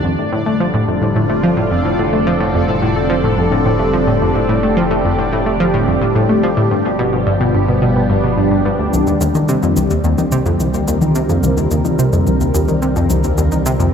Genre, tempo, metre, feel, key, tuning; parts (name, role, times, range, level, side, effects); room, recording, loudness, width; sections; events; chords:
ambient, sequencer-driven space music; 108 BPM; 4/4; straight; C minor from 8.9 s; A4 = 440 Hz
phased analog pad; sustained chords; 0.0-13.9 s; D3 to Bb4; -17 LUFS; equal; phaser, chorus
analog pluck; riff; 0.0-13.9 s; C2 to A3; -16 LUFS; left 1 dB; chorus, cassette tape, ping-pong delay
fat analog bass; bass; 0.0-13.9 s; F1 to C2; -24 LUFS; equal
bubbling stepped-filter texture; texture; 0.0-8.9 s; D4 to D5; -25 LUFS; right 2 dB; chorus, built-in reverb
electronic toms and shaker; percussion; 8.9-13.9 s; -23 LUFS; left 4 dB; ping-pong delay
wet cathedral reverb, RT60 5.5 s; in a vast, echoing space; -13 LUFS; side -7 dB against mid
0.0-8.9 A section; 8.9-13.9 B section
0.0 F; 6.7 G7; 8.9 Cm7